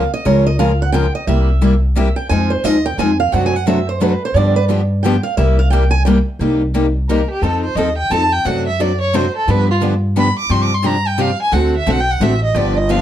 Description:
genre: acoustic string swing (jazz manouche).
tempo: 176 BPM.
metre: 3/4.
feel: swing 62% on 8ths.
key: unclear.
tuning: A4 = 440 Hz.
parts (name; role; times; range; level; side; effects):
picked steel-string acoustic guitar; second line; 0.0-6.2 s; B4 to Ab5; -19 LUFS; right 6 dB; none.
picked steel-string acoustic guitar; accompaniment; 0.0-13.0 s; C3 to C5; -19 LUFS; left 4 dB; none.
picked steel-string acoustic guitar; accompaniment; 0.0-13.0 s; C3 to C5; -22 LUFS; right 6 dB; none.
upright bass; bass; 0.0-13.0 s; G1 to G2; -17 LUFS; equal; none.
warm violin; melody; 7.1-13.0 s; F4 to D6; -18 LUFS; right 1 dB; none.
room: light reverb.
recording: dark, warm production.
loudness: -13 LUFS.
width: side -11 dB against mid.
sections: 0.0-6.4 A section; 6.4-13.0 A section.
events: steel-string acoustic guitar solo 0.0-6.4; violin solo 6.4-13.0.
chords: 0.0 Db6; 1.3 C7; 2.3 Fm7; 3.3 D7/F#; 4.4 G7; 5.4 C7; 6.4 Cm7; 7.4 F7; 8.4 D7/F#; 9.5 G7; 10.5 G7sus4; 11.5 D7.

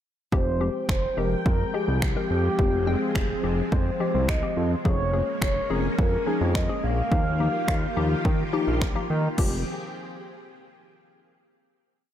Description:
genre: dance-pop.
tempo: 106 BPM.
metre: 4/4.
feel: straight.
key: F minor.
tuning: A4 = 440 Hz.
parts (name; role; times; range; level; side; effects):
mellow horn-like synth lead; melody; 0.3-8.8 s; G4 to F5; -29 LUFS; right 1 dB; chorus, ping-pong delay.
hollow square pluck; accompaniment; 0.3-9.6 s; F3 to G5; -31 LUFS; left 5 dB; chorus, sidechain pumping.
string machine, full ensemble; sustained chords; 0.3-9.6 s; Eb3 to G5; -31 LUFS; equal; ensemble chorus, sidechain pumping.
fat analog bass; bass; 0.3-9.6 s; F1 to Eb3; -26 LUFS; equal; sidechain pumping.
house drum kit; drums; 0.3-9.5 s; crash cymbal, finger snaps, kick drum; -25 LUFS; equal; none.
room: light reverb.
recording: none.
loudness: -22 LUFS.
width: side -10 dB against mid.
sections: 0.3-9.4 verse; 9.4-11.6 final chord.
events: none.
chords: 0.3 Fmadd9; 4.9 Bbm7/F; 7.1 Ebadd9; 9.4 Fmadd9.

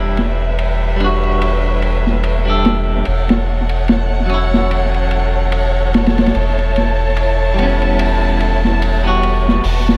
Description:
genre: trip hop.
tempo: 73 BPM.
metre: 4/4.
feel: swing 57% on 16ths.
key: unclear.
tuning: A4 = 441 Hz.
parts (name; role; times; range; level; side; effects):
clean electric guitar; accompaniment; 0.0-9.6 s; F#3 to A4; -23 LUFS; equal; tremolo, tape echo.
warm studio violin section; sustained chords; 0.0-10.0 s; G3 to A5; -24 LUFS; equal; none.
soft dub sub bass; bass; 0.0-10.0 s; E1; -19 LUFS; equal; tube saturation.
crunchy breakbeat drum kit; drums; 0.2-10.0 s; hi-hat, ride cymbal, snare drum; -22 LUFS; equal; low-pass filter on kick, low-pass filter on cymbals, low-pass filter on hats, low-pass filter on snare, low-pass filter on room, analog delay.
room: little or no reverb.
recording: echo-heavy mix.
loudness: -16 LUFS.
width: mono.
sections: 0.0-10.0 A section.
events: none.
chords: 0.0 Em7; 3.1 A6/E; 6.3 A7/E.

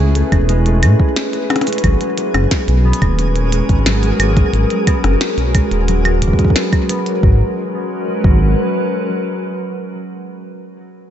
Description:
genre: IDM.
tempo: 89 BPM.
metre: 4/4.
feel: straight.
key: G# minor.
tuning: A4 = 440 Hz.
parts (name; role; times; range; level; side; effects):
warbly lo-fi synth keys; melody; 0.0-1.1 s; G#4; -32 LUFS; right 5 dB; none.
glassy FM pad; sustained chords; 0.0-9.9 s; G#3 to B4; -21 LUFS; equal; ensemble chorus, built-in reverb, vintage 12-bit sampler grit.
concert harp; arpeggios; 0.0-8.6 s; F#3 to E4; -22 LUFS; left 1 dB; low-pass filter, tape echo.
dark detuned saw bass; bass; 0.0-8.6 s; D#1 to A2; -14 LUFS; equal; none.
glitchy drum kit; drums; 0.2-7.2 s; cabasa, claves, hi-hat, percussion blips, snare drum; -21 LUFS; left 1 dB; dub echo.
electronic kick drum; drums; 0.3-8.4 s; none; -14 LUFS; equal; none.
twinkling granular texture; texture; 2.3-7.2 s; G#3 to G#4; -29 LUFS; right 2 dB; built-in reverb.
room: light reverb, digital ambience.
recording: echo-heavy mix, nothing above 7.9 kHz.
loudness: -13 LUFS.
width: side -10 dB against mid.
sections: 0.0-1.8 A section; 1.8-7.2 B section; 7.2-9.9 C section.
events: break 1.2-1.8; filter sweep on detuned saw bass 1.8-7.2.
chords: 0.0 Amaj9; 1.8 G#m11.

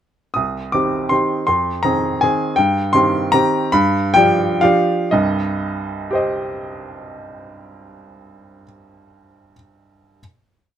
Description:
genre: classical, piano waltz.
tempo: 115-171 BPM.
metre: 3/4.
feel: rubato.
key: C minor.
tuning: A4 = 441 Hz.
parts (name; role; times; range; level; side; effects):
bright upright piano; solo; 0.3-10.2 s; C2 to Eb6; -15 LUFS; equal; none.
room: light reverb.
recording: none.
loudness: -15 LUFS.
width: side -10 dB against mid.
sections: 0.4-5.1 A section; 5.1-8.1 final chord.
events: slowing down 2.0-5.1.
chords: 0.4 Cm; 1.5 Fm7; 2.6 Cm/G; 3.7 G7; 5.1 Cm.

